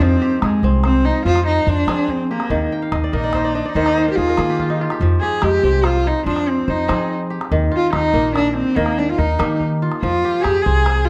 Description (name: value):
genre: west african traditional, West African string and xylophone music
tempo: 96 BPM (dotted quarters)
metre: 12/8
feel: straight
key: F dorian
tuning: A4 = 441 Hz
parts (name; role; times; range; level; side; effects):
- rich cello; melody; 0.0-11.1 s; Ab3 to Ab4; -21 LUFS; equal; none
- kora; arpeggios; 0.0-11.1 s; Eb3 to G5; -25 LUFS; equal; none
- upright bass; bass; 0.0-11.1 s; Bb1 to F3; -22 LUFS; equal; none
- calabash; percussion; 0.0-11.0 s; none; -30 LUFS; equal; none
room: moderate recital hall reverb, RT60 1.5 s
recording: dark, warm production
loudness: -18 LUFS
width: mono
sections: 0.0-11.1 A section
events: cello solo 0.0-11.1; kora fill 2.7-5.0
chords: 0.0 Fm; 2.5 Eb; 5.0 Fm; 7.5 Eb; 10.0 Fm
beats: | 0.00 0.63 1.25 1.88 | 2.50 3.13 3.75 4.38 | 5.01 5.63 6.26 6.89 | 7.51 8.14 8.77 9.40 | 10.03 10.65